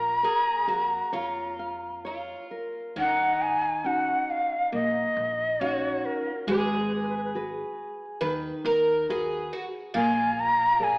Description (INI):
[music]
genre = fado-style ballad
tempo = 69 BPM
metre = 4/4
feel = rubato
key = Eb minor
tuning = A4 = 440 Hz
[part]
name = breathy mellow shakuhachi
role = melody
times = 0.0-11.0 s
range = Bb4 to Bb5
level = -24 LUFS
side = equal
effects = none
[part]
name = picked twelve-string acoustic guitar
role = second line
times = 0.0-11.0 s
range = Eb4 to Cb5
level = -30 LUFS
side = right 1 dB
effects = none
[part]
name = nylon-string guitar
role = accompaniment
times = 0.0-11.0 s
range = Eb3 to F5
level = -32 LUFS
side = equal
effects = none
[part]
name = upright bass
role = bass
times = 0.0-11.0 s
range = Ab1 to F2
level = -43 LUFS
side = equal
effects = none
[sound]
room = wet recital hall reverb, RT60 1.7 s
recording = AM radio sound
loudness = -24 LUFS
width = side -25 dB against mid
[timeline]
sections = 0.0-3.0 A section; 3.0-11.0 B section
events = none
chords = 0.0 Bbm; 3.0 Ebm7; 6.5 Abm7; 9.9 Bb7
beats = 0.24 1.14 2.06 | 2.97 3.85 4.73 5.61 | 6.48 7.34 8.21 9.08 | 9.94 10.80